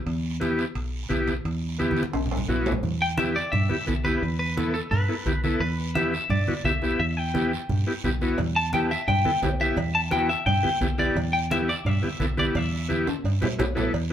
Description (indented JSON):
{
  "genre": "latin, cumbia",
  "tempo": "173 BPM",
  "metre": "4/4",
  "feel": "straight",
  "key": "E minor",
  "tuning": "A4 = 440 Hz",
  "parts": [
    { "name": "fingered electric bass", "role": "bass", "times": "0.1-14.1 s", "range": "B1 to G2", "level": "-27 LUFS", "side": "equal", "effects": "none" },
    { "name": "guiro", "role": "percussion", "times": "0.1-14.1 s", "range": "none", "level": "-40 LUFS", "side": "right 5 dB", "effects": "none" },
    { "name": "timbales and cowbell", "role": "percussion", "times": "0.1-2.7, 8.4-14.1 s", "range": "none", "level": "-34 LUFS", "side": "equal", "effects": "none" },
    { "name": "congas", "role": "percussion", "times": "0.2-14.1 s", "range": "none", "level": "-31 LUFS", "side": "right 2 dB", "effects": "none" },
    { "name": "combo organ", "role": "accompaniment", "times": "0.4-14.1 s", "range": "B3 to A4", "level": "-27 LUFS", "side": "left 1 dB", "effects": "none" },
    { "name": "clean electric guitar", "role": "melody", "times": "3.0-13.6 s", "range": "A4 to A5", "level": "-26 LUFS", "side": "left 1 dB", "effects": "spring reverb" }
  ],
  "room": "wet small room reverb, RT60 0.5 s",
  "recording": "band playing live in one room",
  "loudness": "-22 LUFS",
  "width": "side -10 dB against mid",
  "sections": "0.0-2.8 A section; 2.8-13.9 B section",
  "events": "drum fill 1.8-2.8, 12.9-13.9",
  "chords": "0.0 Em"
}